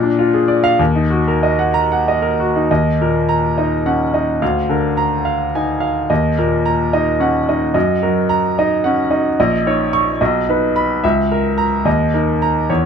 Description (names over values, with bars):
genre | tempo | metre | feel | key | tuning
classical, romantic character piece for solo piano | 62-75 BPM (dotted quarters) | 6/8 | rubato | Eb minor | A4 = 440 Hz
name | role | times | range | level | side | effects
bright baby grand piano | solo | 0.0-12.9 s | A#1 to C#6 | -14 LUFS | equal | none
room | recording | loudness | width
little or no reverb | close, detailed microphones | -14 LUFS | side -7 dB against mid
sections
0.0-2.7 A section; 2.7-12.9 B section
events
none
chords
0.0 Bb7; 0.8 Ebm; 4.4 Bb7/D; 6.1 Ebm; 7.7 Ebm/Gb; 9.4 D#5/A#; 10.2 B; 11.0 A#dim/C#; 11.9 D#5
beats
| 0.79 1.75 | 2.69 3.57 | 4.41 5.26 | 6.10 6.93 | 7.75 8.56 | 9.38 10.20 | 11.03 11.86 | 12.69